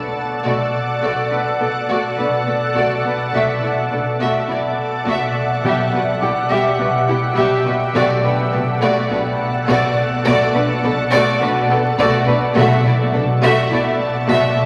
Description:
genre	cinematic, suspense film score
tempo	52 BPM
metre	4/4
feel	straight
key	B minor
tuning	A4 = 439 Hz
part	shimmering ambient pad	sustained chords	0.0-14.7 s	G4 to F#5	-24 LUFS	equal	chorus, built-in reverb
part	concert harp	riff	0.0-14.7 s	B2 to B3	-25 LUFS	equal	none
part	impact and reverse cymbal	sound effects	0.0-3.3, 12.6-14.7 s	none	barely audible	none	none
part	vibraphone with soft mallets	texture	0.0-14.7 s	F#4 to D6	-28 LUFS	equal	none
part	warm symphonic violin section	second line	0.4-14.6 s	B3 to G4	-27 LUFS	equal	none
part	dark symphonic viola section	accompaniment	0.4-14.6 s	G3 to A3	-27 LUFS	equal	none
part	warm chamber violin section	melody	0.5-14.6 s	G4 to E5	-24 LUFS	equal	none
part	clear chamber double bass section	bass	0.5-14.4 s	B1	-32 LUFS	equal	none
part	warm symphonic cello section	bass	0.5-14.4 s	B2	-28 LUFS	equal	none
part	timpani	percussion	5.6-14.3 s	B2	-31 LUFS	equal	none
room	wet concert hall reverb, RT60 2.5 s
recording	vinyl crackle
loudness	-17 LUFS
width	mono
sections	0.0-14.7 A section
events	impact 0.0-3.3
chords	0.0 Bm7; 5.6 Emadd9/B; 7.9 Bm7

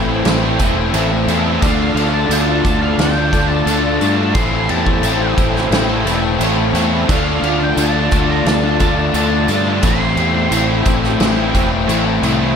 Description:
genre	rock, shoegaze and dream pop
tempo	88 BPM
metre	4/4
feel	straight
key	unclear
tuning	A4 = 440 Hz
part	warm analog pad	sustained chords	0.0-12.6 s	E4 to A5	-24 LUFS	left 1 dB	chorus
part	electric guitar through a small old amp	arpeggios	0.0-12.6 s	E3 to G4	-24 LUFS	left 3 dB	wide subtle chorus, slapback echo
part	crunchy overdriven guitar	riff	0.0-12.6 s	A2 to F4	-22 LUFS	left 10 dB	ensemble chorus
part	crunchy overdriven guitar	riff	0.0-12.6 s	A2 to F4	-22 LUFS	right 12 dB	reverse reverb
part	distorted electric guitar	riff	0.0-12.6 s	A2 to D4	-22 LUFS	equal	overdrive
part	growling fingered electric bass	bass	0.0-12.5 s	E1 to G2	-20 LUFS	equal	overdrive
part	loose indie drum kit	drums	0.2-12.4 s	crash cymbal, kick drum, snare drum	-20 LUFS	equal	none
part	tambourine	percussion	0.6-12.4 s	none	-31 LUFS	right 12 dB	none
part	octave-fuzz lead guitar	melody	1.6-12.2 s	F5 to C6	-23 LUFS	equal	distortion, slapback echo
room	light reverb, small room ambience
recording	none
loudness	-13 LUFS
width	side -7 dB against mid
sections	0.0-12.6 A section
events	none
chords	0.0 Am7; 1.6 Dm; 4.4 Am7; 7.1 Dm; 9.8 Am7

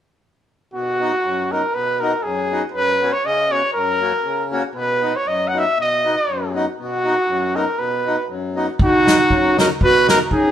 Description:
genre	alpine folk, alpine dance band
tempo	119 BPM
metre	2/4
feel	swing 55% on 8ths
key	B major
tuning	A4 = 439 Hz
part	clear trumpet	melody	0.7-10.5 s	F#4 to F#5	-18 LUFS	equal	none
part	accordion	accompaniment	0.7-10.5 s	F#2 to F#4	-24 LUFS	left 2 dB	none
part	warm clarinet	second line	8.8-10.5 s	D#4 to F#4	-18 LUFS	right 1 dB	none
part	natural country drum kit	drums	8.8-10.4 s	kick drum, snare drum	-19 LUFS	equal	none
room	wet studio reverb, RT60 0.9 s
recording	band playing live in one room, lossy compression artefacts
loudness	-16 LUFS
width	side -10 dB against mid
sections	0.7-8.8 A section; 8.8-10.5 A section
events	none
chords	0.7 B; 2.7 F#sus4; 3.7 F#; 4.8 B

